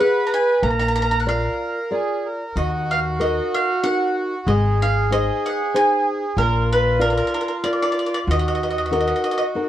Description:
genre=italian folk, Italian serenade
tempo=94 BPM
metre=3/4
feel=swing 54% on 8ths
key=Eb harmonic minor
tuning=A4 = 436 Hz
part: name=bowl-back mandolin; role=melody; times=0.0-9.4 s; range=Bb4 to Bb5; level=-22 LUFS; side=right 1 dB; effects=tape echo
part: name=accordion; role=second line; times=0.0-9.7 s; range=F4 to Cb5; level=-24 LUFS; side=right 3 dB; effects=none
part: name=nylon-string guitar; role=accompaniment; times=0.0-9.7 s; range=Bb2 to D5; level=-24 LUFS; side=left 2 dB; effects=none
part: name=upright bass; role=bass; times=0.6-9.1 s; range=Ab1 to Eb2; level=-23 LUFS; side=equal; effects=none
room=moderate studio reverb, RT60 0.6 s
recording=worn, warbling old tape, cassette tape, warbly pitch drift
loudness=-18 LUFS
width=side -12 dB against mid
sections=0.0-9.7 A section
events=none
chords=0.0 Abm; 0.6 Bb; 2.6 Ebm; 4.5 Ab; 6.4 Bb; 8.3 Ebm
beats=0.00 | 0.63 1.27 1.92 | 2.56 3.20 3.83 | 4.47 5.10 5.73 | 6.36 7.00 7.63 | 8.27 8.92 9.56

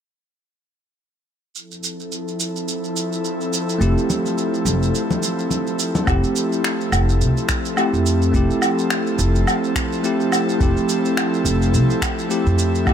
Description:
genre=sunset chillout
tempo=106 BPM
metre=4/4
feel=swing 57% on 16ths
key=F major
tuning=A4 = 440 Hz
part: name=airy breathy pad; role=sustained chords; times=1.5-12.9 s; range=F3 to A4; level=-24 LUFS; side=equal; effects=chorus
part: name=electronic shaker, woodblock and finger snaps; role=drums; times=1.6-12.9 s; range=none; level=-25 LUFS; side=right 1 dB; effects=none
part: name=bell-like tine electric piano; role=accompaniment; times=3.8-12.9 s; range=A3 to G4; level=-22 LUFS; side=equal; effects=auto-pan, tape echo
part: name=upright bass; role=bass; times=3.8-12.9 s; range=F1 to F2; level=-18 LUFS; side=equal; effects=none
part: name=congas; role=percussion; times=4.1-6.1 s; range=none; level=-25 LUFS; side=left 2 dB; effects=none
part: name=electronic kick drum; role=drums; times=6.1-12.9 s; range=none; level=-22 LUFS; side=equal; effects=overdrive
room=light reverb, digital ambience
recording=none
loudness=-17 LUFS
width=side -8 dB against mid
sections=1.6-6.1 A section; 6.1-12.9 B section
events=filter sweep on analog synth pad 1.6-6.1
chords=1.6 Fmaj7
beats=| 1.55 2.12 2.68 3.25 | 3.81 4.38 4.95 5.51 | 6.08 6.65 7.21 7.78 | 8.34 8.91 9.48 10.04 | 10.61 11.17 11.74 12.31 | 12.87

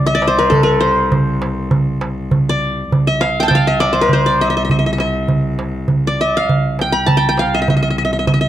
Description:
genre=Arabic maqam ensemble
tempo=101 BPM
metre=3/4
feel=straight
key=C maqam rast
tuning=A4 = 440 Hz
part: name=qanun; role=melody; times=0.0-8.5 s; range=A4 to Bb5+50c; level=-15 LUFS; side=equal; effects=none
part: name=rich cello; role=drone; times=0.0-8.5 s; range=C2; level=-22 LUFS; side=left 1 dB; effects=stereo widening
part: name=darbuka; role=percussion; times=0.2-8.4 s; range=none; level=-17 LUFS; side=right 2 dB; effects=none
room=light reverb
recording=dry, close 1970s-style studio recording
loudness=-13 LUFS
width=side -12 dB against mid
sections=0.0-8.5 A section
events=none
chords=none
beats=0.53 | 1.13 1.73 2.32 | 2.92 3.52 4.11 | 4.71 5.30 5.90 | 6.50 7.09 7.69 | 8.28

